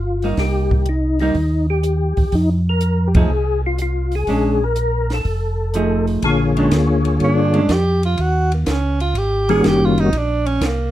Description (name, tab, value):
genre	soul jazz organ trio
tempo	123 BPM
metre	4/4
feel	swing 69% on 8ths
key	unclear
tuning	A4 = 442 Hz
part	percussive tonewheel organ	melody	0.0-10.1 s	D3 to C#5	-19 LUFS	left 2 dB	slow rotary speaker, chorus vibrato
part	mellow tonewheel organ	bass	0.0-10.9 s	F1 to G2	-19 LUFS	equal	slow rotary speaker
part	archtop guitar, miked and amplified	accompaniment	0.2-7.7 s	F3 to G#4	-20 LUFS	right 2 dB	none
part	compact cocktail drum kit	drums	0.2-10.8 s	hi-hat, kick drum, ride cymbal, snare drum	-20 LUFS	equal	none
part	clear tenor saxophone	melody	7.2-10.9 s	Bb3 to Ab4	-19 LUFS	right 3 dB	none
room	light reverb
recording	dark, warm production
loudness	-15 LUFS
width	side -14 dB against mid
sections	0.0-6.2 A section; 6.2-10.9 B section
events	band accent 3.1; tenor saxophone solo 6.2-10.9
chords	0.0 Cm7; 2.3 Fm; 4.3 Bb7#9; 5.3 F7#9; 6.2 Bb7#9; 8.2 Eb7#9; 10.1 Bb(#9)